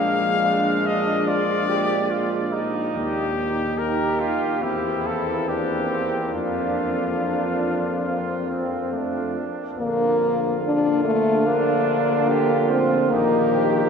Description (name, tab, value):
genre	classical, brass quintet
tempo	72 BPM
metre	4/4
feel	rubato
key	Bb major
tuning	A4 = 440 Hz
part	bright trumpet	melody	0.0-13.9 s	F4 to F5	-26 LUFS	left 3 dB	none
part	mellow trumpet	second line	0.0-13.9 s	Bb3 to G4	-28 LUFS	right 5 dB	none
part	bright trombone	accompaniment	0.0-13.9 s	D3 to Bb3	-28 LUFS	right 2 dB	none
part	clear French horn	accompaniment	0.0-13.9 s	A3 to Eb4	-24 LUFS	left 2 dB	none
part	warm bass trombone	bass	0.0-13.9 s	Bb1 to F2	-27 LUFS	right 1 dB	none
room	wet cathedral reverb, RT60 6.8 s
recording	heard from further back in the room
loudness	-20 LUFS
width	side -6 dB against mid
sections	0.0-9.8 A section; 9.8-13.9 A section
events	none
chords	0.0 Bb7; 2.9 Eb; 4.6 C7/E; 6.3 Bb/F; 8.1 F; 9.8 Bb; 13.1 Eb/Bb